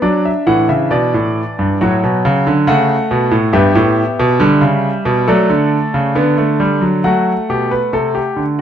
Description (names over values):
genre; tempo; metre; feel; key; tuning
classical, baroque-style 4-part fugue for grand piano; 68 BPM; 4/4; straight; D major; A4 = 440 Hz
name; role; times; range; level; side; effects
clear concert grand piano; solo; 0.0-8.6 s; G2 to F#5; -12 LUFS; equal; none
room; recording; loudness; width
light reverb; dark, warm production; -12 LUFS; side -9 dB against mid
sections
0.0-7.0 A section; 7.0-8.6 B section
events
none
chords
0.0 D; 1.8 F#m/A; 3.5 G; 5.3 D; 7.0 D7